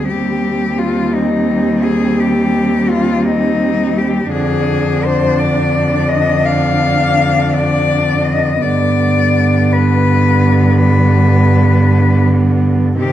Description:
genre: classical, lyrical piece for cello ensemble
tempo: 56 BPM (dotted quarters)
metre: 12/8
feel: rubato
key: unclear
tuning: A4 = 440 Hz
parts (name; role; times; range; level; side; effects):
- rich cello; melody; 0.0-13.1 s; Eb4 to F5; -17 LUFS; left 6 dB; none
- rich cello; second line; 0.0-13.1 s; B3 to D4; -18 LUFS; right 6 dB; none
- clear cello; accompaniment; 0.0-13.1 s; D3 to G3; -18 LUFS; left 3 dB; none
- clear cello; bass; 0.0-13.1 s; D2 to C3; -15 LUFS; right 1 dB; none
room: moderate recital hall reverb, RT60 1.5 s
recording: dark, warm production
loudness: -11 LUFS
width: side -12 dB against mid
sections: 0.0-13.1 A section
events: none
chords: 0.1 Cm/Eb; 4.3 Dm/F; 8.6 G

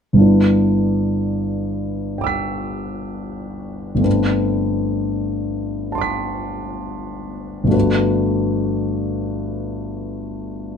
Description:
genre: classical, impressionist solo piano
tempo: 60-66 BPM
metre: 4/4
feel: rubato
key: G major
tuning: A4 = 443 Hz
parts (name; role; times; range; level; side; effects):
- clear grand piano; solo; 0.1-10.8 s; G1 to B6; -18 LUFS; equal; none
room: light reverb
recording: minimal, uncompressed stereo recording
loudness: -18 LUFS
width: side -7 dB against mid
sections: 0.2-10.8 A section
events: none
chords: 0.2 G6; 4.1 Am11/G; 7.7 Gmaj9

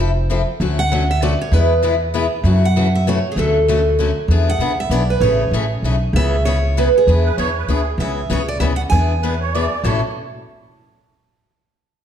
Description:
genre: acoustic string swing (jazz manouche)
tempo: 195 BPM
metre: 3/4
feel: swing 60% on 8ths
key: A major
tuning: A4 = 440 Hz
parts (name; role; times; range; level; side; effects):
- picked steel-string acoustic guitar; melody; 0.0-10.0 s; G#4 to A5; -20 LUFS; right 3 dB; none
- picked steel-string acoustic guitar; accompaniment; 0.0-10.0 s; A2 to A4; -21 LUFS; left 5 dB; none
- upright bass; bass; 0.0-10.0 s; F1 to F#2; -17 LUFS; equal; none
- musette accordion; second line; 7.2-10.0 s; G#4 to D5; -25 LUFS; right 6 dB; none
room: moderate recital hall reverb, RT60 1.4 s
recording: dark, warm production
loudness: -15 LUFS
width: side -9 dB against mid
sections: 0.0-6.1 A section; 6.1-9.8 B section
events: none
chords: 0.0 Fmaj7; 0.6 Dmaj7; 1.5 E; 2.4 F#m7; 3.4 Dmaj7; 4.3 E7; 5.2 Amaj7; 6.1 C#m7; 7.1 E7; 8.0 C#m7; 8.9 E7; 9.8 Aadd9

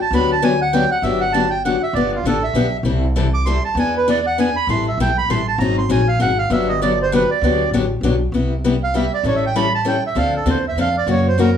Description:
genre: acoustic string swing (jazz manouche)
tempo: 197 BPM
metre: 3/4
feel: swing 59% on 8ths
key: G major, C major from 8.3 s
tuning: A4 = 439 Hz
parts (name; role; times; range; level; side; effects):
- accordion; melody; 0.0-11.6 s; F4 to D6; -19 LUFS; right 4 dB; none
- picked steel-string acoustic guitar; accompaniment; 0.1-11.5 s; C3 to A4; -19 LUFS; left 4 dB; none
- upright bass; bass; 0.1-11.6 s; G1 to F#2; -21 LUFS; equal; none
room: moderate club reverb, RT60 0.6 s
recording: studio ambience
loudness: -15 LUFS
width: side -8 dB against mid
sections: 0.0-1.0 A section; 1.0-8.3 A section; 8.3-11.6 A section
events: accordion solo 0.0-8.3, 8.3-11.6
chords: 0.0 Gmaj7; 1.9 G7; 2.9 C6; 3.8 E7; 4.7 Am9; 5.6 Ab9; 6.5 Gmaj9; 8.3 Cmaj7; 9.2 A7; 10.2 Dm7; 11.1 F#7

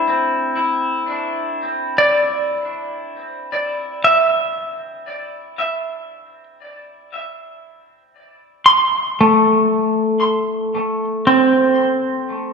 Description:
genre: ambient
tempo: free time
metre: none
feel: none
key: unclear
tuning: A4 = 439 Hz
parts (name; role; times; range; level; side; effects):
- semi-hollow electric guitar; solo; 0.0-12.5 s; A3 to C6; -15 LUFS; equal; diffuse ambient delay
room: wet concert hall reverb, RT60 2.2 s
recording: dark, warm production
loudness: -15 LUFS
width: side -5 dB against mid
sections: 0.0-12.5 A section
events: none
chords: 0.0 Am; 11.7 N.C.

